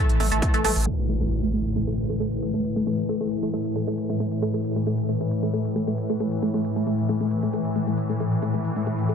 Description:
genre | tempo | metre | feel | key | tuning
driving peak-time techno | 135 BPM | 4/4 | straight | unclear | A4 = 437 Hz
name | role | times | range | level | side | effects
tight sequenced synth | riff | 0.0-9.1 s | A3 | -27 LUFS | right 1 dB | chorus, phaser, sidechain pumping, tape echo
swarming drone | drone | 0.0-9.1 s | A2 to E3 | -25 LUFS | left 1 dB | built-in reverb, sidechain pumping
techno drum kit | drums | 0.1-9.1 s | hi-hat, toms | -32 LUFS | right 2 dB | none
saturated sub bass | bass | 0.2-0.9 s | A1 | -25 LUFS | equal | tube saturation, sidechain pumping, low-pass filter
electronic kick drum | drums | 0.4-0.5 s | none | -22 LUFS | equal | none
impact | sound effects | 0.9-2.6 s | none | -29 LUFS | equal | none
room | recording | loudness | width
light reverb, digital ambience | dense, heavily limited modern master, low-pass filter | -22 LUFS | side -7 dB against mid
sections
0.9-9.1 A section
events
impact 0.9-2.6; filter sweep on synth arpeggio sound 0.9-9.1; filter sweep 0.9-9.1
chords
0.0 A5

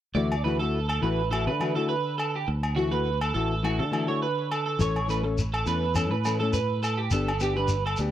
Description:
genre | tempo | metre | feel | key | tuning
highlife guitar band | 103 BPM | 4/4 | straight | D major | A4 = 440 Hz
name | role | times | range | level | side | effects
nylon-string guitar | accompaniment | 0.1-8.1 s | E3 to A4 | -29 LUFS | left 5 dB | none
electric guitar at the edge of break-up | arpeggios | 0.1-8.0 s | F#4 to D5 | -29 LUFS | right 5 dB | analog chorus, tape echo
fingered electric bass | bass | 0.1-8.1 s | G1 to D3 | -28 LUFS | equal | none
agogo bells | percussion | 0.3-8.0 s | none | -35 LUFS | left 1 dB | none
shekere | percussion | 4.8-8.1 s | none | -31 LUFS | left 1 dB | none
room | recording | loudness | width
light reverb | dry, close 1970s-style studio recording | -24 LUFS | side -11 dB against mid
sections
0.2-8.1 A section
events
none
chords
0.2 Dadd9; 4.8 A; 7.1 G

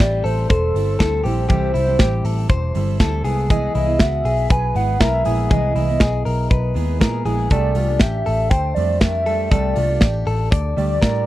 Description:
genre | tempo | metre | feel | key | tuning
jangly indie pop | 120 BPM | 4/4 | straight | unclear | A4 = 440 Hz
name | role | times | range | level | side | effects
warbly nostalgic lead | melody | 0.0-11.3 s | A4 to G#5 | -22 LUFS | equal | chorus, tape echo
fingerpicked steel-string acoustic guitar | accompaniment | 0.0-11.3 s | C3 to A4 | -27 LUFS | right 7 dB | none
direct-recorded clean electric guitar | arpeggios | 0.0-11.3 s | E4 to D5 | -26 LUFS | left 4 dB | spring reverb, tape echo
vintage muted picked electric bass | bass | 0.0-11.3 s | E1 to Bb2 | -21 LUFS | equal | none
modern studio drum kit | drums | 0.0-11.1 s | hi-hat, kick drum, snare drum | -15 LUFS | equal | none
room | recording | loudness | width
little or no reverb | dry, close 1970s-style studio recording | -16 LUFS | side -15 dB against mid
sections
0.0-11.3 A section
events
none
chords
0.0 Am7; 3.2 Emaj7; 7.5 Gsus2

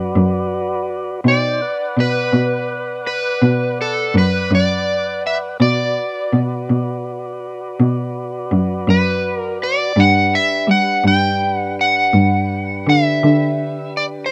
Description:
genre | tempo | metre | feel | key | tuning
slow blues | 55 BPM (dotted quarters) | 12/8 | straight | B minor | A4 = 440 Hz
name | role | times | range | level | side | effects
tonewheel organ | sustained chords | 0.0-14.3 s | D4 to G5 | -27 LUFS | equal | slow rotary speaker
rich cello | bass | 0.0-14.3 s | F#2 to G3 | -19 LUFS | equal | none
overdriven slide guitar | melody | 1.3-14.3 s | A4 to G5 | -20 LUFS | equal | none
room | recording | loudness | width
small room ambience | rough home demo mix | -17 LUFS | mono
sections
0.0-14.3 A section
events
none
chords
0.0 Bm; 10.0 Gmaj7

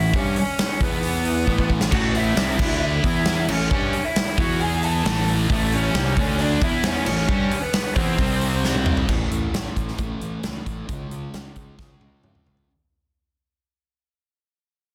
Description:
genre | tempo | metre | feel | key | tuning
quiet-loud alternative rock | 134 BPM | 4/4 | straight | A major | A4 = 440 Hz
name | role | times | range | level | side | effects
lead guitar through a small cranked amp | melody | 0.0-8.6 s | A3 to A5 | -28 LUFS | equal | overdrive, analog delay
thick fuzz guitar | riff | 0.0-12.7 s | A2 to G4 | -28 LUFS | equal | distortion
fuzz fingered electric bass | bass | 0.0-12.6 s | A1 to G2 | -29 LUFS | equal | overdrive
huge arena drum kit | drums | 0.1-12.7 s | crash cymbal, hi-hat, kick drum, snare drum, toms | -26 LUFS | equal | none
heavy high-gain guitar | riff | 1.9-9.1 s | A2 to G4 | -31 LUFS | equal | distortion
mellow electric guitar | arpeggios | 9.1-12.7 s | A2 to E#4 | -39 LUFS | equal | none
room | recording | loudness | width
light reverb, small room ambience | dense, heavily limited modern master | -22 LUFS | mono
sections
0.0-9.1 A section; 9.1-12.7 B section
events
drum fill 1.5-1.9, 8.6-9.1, 11.8-12.7; fade-out 9.1-12.7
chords
0.0 A; 0.8 E5; 1.5 A5; 2.6 D5; 3.0 E5; 3.5 A; 4.4 E5; 5.1 A; 6.2 D5; 6.6 E5; 7.1 A; 8.2 C5; 9.1 A; 10.9 C#

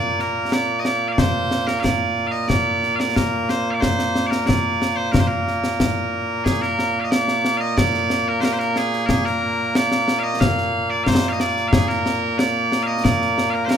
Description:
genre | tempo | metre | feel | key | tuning
scottish traditional, Scottish pipe music | 91 BPM | 2/4 | straight | Bb major | A4 = 437 Hz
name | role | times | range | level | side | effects
loud bright bagpipes | melody | 0.0-13.8 s | Bb2 to F5 | -20 LUFS | right 1 dB | none
concert snare drum and concert bass drum | drums | 0.2-13.8 s | none | -21 LUFS | left 1 dB | none
room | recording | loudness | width
moderate recital hall reverb, RT60 1.4 s | minimal, uncompressed stereo recording | -17 LUFS | side -8 dB against mid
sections
0.0-6.5 A section; 6.5-13.8 B section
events
none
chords
none

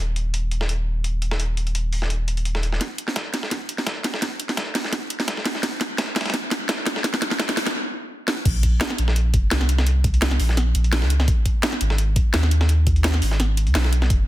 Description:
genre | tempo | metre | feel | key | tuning
liquid drum and bass | 170 BPM | 4/4 | swing 53% on 16ths | Bb minor | A4 = 439 Hz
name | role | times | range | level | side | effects
warm sub bass | bass | 0.0-2.8, 8.5-14.3 s | Eb1 to Eb2 | -19 LUFS | equal | none
dusty soul sampler-style drum kit | drums | 0.2-14.2 s | hi-hat, snare drum | -29 LUFS | equal | high-pass filter on hats, high-pass filter on snare
electronic kick drum | drums | 2.8-14.2 s | none | -22 LUFS | equal | high-pass filter on kick
garage drum kit | drums | 2.8-14.2 s | crash cymbal, hi-hat, snare drum | -24 LUFS | equal | low-pass filter on snare, low-pass filter on hats, low-pass filter on cymbals
room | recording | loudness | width
light reverb, digital ambience | dense, heavily limited modern master | -19 LUFS | side -15 dB against mid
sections
0.0-2.8 A section; 2.8-8.5 B section; 8.5-14.3 C section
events
build-up 2.8-8.5; drum fill 2.8-7.7, 8.3; stop 7.7-8.5; drop 8.5-14.3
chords
none

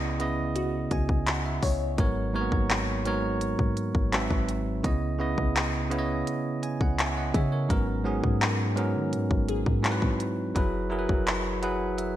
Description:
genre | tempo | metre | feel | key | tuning
contemporary R&B | 84 BPM | 4/4 | straight | G# minor | A4 = 440 Hz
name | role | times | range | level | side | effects
bell-like tine electric piano | accompaniment | 0.0-12.2 s | G#2 to G#5 | -28 LUFS | right 2 dB | none
clean 808-style bass | bass | 0.0-12.2 s | F#1 to D#3 | -31 LUFS | left 1 dB | none
trap drum kit | drums | 0.2-12.1 s | handclaps, hi-hat, kick drum | -28 LUFS | left 1 dB | vintage 12-bit sampler grit, gated reverb
glassy wavetable pluck | texture | 0.6-12.2 s | F#4 to C#5 | -38 LUFS | left 4 dB | chorus, digital delay
room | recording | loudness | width
light reverb, digital ambience | bright 1980s-style digital production | -24 LUFS | side -12 dB against mid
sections
0.0-12.2 A section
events
tine electric piano fill 0.6-2.0, 6.3-7.7, 11.3-12.2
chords
0.0 C#m9; 2.0 G#m11; 4.1 G#7alt; 4.8 C#m9; 7.7 G#m11; 9.8 G#7alt; 10.6 F#9sus4

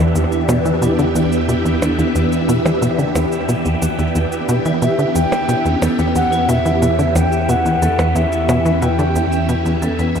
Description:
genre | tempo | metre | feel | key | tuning
ambient, sequencer-driven space music | 90 BPM | 4/4 | straight | E dorian | A4 = 440 Hz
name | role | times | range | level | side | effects
phased string machine | sustained chords | 0.0-10.2 s | E3 to E5 | -19 LUFS | equal | ensemble chorus, phaser, shimmer reverb
vibraphone with medium hard mallets | arpeggios | 0.0-10.1 s | B3 to E5 | -28 LUFS | moving between left 3 dB and right 3 dB | auto-pan, shimmer reverb, tape echo
tight sequencer bass | riff | 0.0-10.2 s | E2 to E3 | -19 LUFS | equal | tape echo
analog drone | bass | 0.0-10.2 s | E2 | -22 LUFS | equal | chorus, phaser, tube saturation
cabasa and percussion blips | percussion | 0.2-10.2 s | none | -27 LUFS | right 2 dB | overdrive, tape echo
wooden flute | melody | 4.8-9.8 s | E5 to G5 | -20 LUFS | equal | shimmer reverb, tape echo
room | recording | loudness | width
wet lush hall reverb, RT60 2.9 s | dark, warm production | -14 LUFS | side -7 dB against mid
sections
0.0-10.2 A section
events
fade-in on vibraphone 0.0-10.2; fade-out 8.4-10.2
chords
0.0 Em7

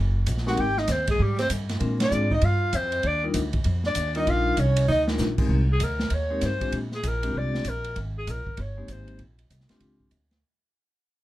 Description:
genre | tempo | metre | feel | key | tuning
jazz, small-group swing and bop | 195 BPM | 4/4 | swing 64% on 8ths | unclear | A4 = 440 Hz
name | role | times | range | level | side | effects
upright bass | bass | 0.0-10.4 s | Gb1 to Bb2 | -26 LUFS | equal | none
open jazz drum kit | drums | 0.3-10.4 s | crash cymbal, hi-hat, kick drum, ride cymbal, snare drum | -31 LUFS | right 1 dB | none
bright clarinet | melody | 0.5-9.2 s | G4 to G5 | -27 LUFS | left 1 dB | none
clear tenor saxophone | second line | 0.5-5.1 s | G3 to G4 | -30 LUFS | right 3 dB | none
vibraphone with medium mallets | accompaniment | 0.5-10.1 s | G3 to Bb4 | -30 LUFS | left 2 dB | none
room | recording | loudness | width
little or no reverb | none | -22 LUFS | side -15 dB against mid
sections
0.0-5.5 A section; 5.5-10.4 B section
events
band accent 2.0; drum fill 4.9-5.2; fade-out 5.5-10.4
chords
0.0 Gbadd9; 0.6 Ab5; 1.8 Bb7; 3.0 Ebmaj9; 5.5 Abmaj9; 6.7 Bb13; 8.0 Abmaj9; 9.2 Bb13

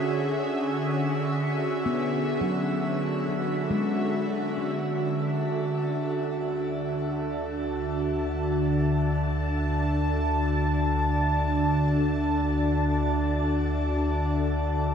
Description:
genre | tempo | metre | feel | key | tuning
ambient | free time | none | none | D lydian | A4 = 439 Hz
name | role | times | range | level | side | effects
evolving wavetable pad | sustained chords | 0.0-14.9 s | D3 to A5 | -25 LUFS | equal | phaser, built-in reverb
handpan | arpeggios | 1.9-6.3 s | F#3 to B3 | -32 LUFS | left 3 dB | ping-pong delay
deep rumbling drone | bass | 7.1-14.9 s | D2 | -29 LUFS | equal | built-in reverb
room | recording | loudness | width
wet shimmer reverb, RT60 9.5 s | dark, warm production | -24 LUFS | side -7 dB against mid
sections
0.0-4.8 A section; 4.8-14.9 B section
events
none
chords
0.0 E6/D; 4.8 Dadd9

